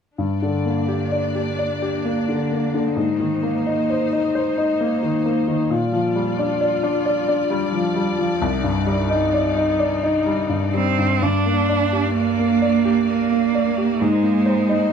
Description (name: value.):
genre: neoclassical piano and strings.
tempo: 65 BPM.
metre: 3/4.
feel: rubato.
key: G phrygian.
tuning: A4 = 440 Hz.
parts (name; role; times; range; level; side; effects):
clear grand piano; accompaniment; 0.2-14.9 s; C2 to D5; -19 LUFS; left 1 dB; none.
rich chamber string section; sustained chords; 0.2-14.9 s; G3 to D5; -27 LUFS; left 2 dB; none.
rich cello; second line; 10.7-14.9 s; Ab3 to D4; -19 LUFS; right 6 dB; none.
room: light reverb.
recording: band playing live in one room.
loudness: -18 LUFS.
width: side -7 dB against mid.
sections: 0.2-11.2 A section; 11.2-14.9 B section.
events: none.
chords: 0.2 Gm; 3.0 Abadd9; 5.7 Bb6; 8.4 Cmadd9; 11.2 Gm; 14.0 Abadd9.